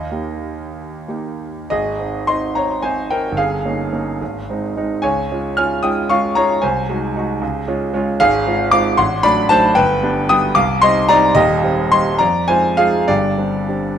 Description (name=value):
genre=classical, romantic character piece for solo piano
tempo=60-78 BPM (dotted quarters)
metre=6/8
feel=rubato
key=Ab major, C minor from 8.2 s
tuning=A4 = 440 Hz
part: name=clear concert grand piano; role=solo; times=0.0-14.0 s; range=Eb1 to F6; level=-14 LUFS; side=equal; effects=none
room=moderate scoring stage reverb, RT60 1.9 s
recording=close, detailed microphones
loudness=-14 LUFS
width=side -9 dB against mid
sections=0.0-1.7 A section; 1.7-14.0 B section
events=none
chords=0.0 Eb; 1.7 Ab; 3.4 Eb7/G; 4.2 Ab; 5.0 Db; 6.6 Ab7/C; 7.4 Db; 8.2 Fm/Ab; 9.0 D7/A; 9.8 G; 10.6 Cm; 11.4 Cm/Eb; 12.2 Fm; 13.1 Gsus4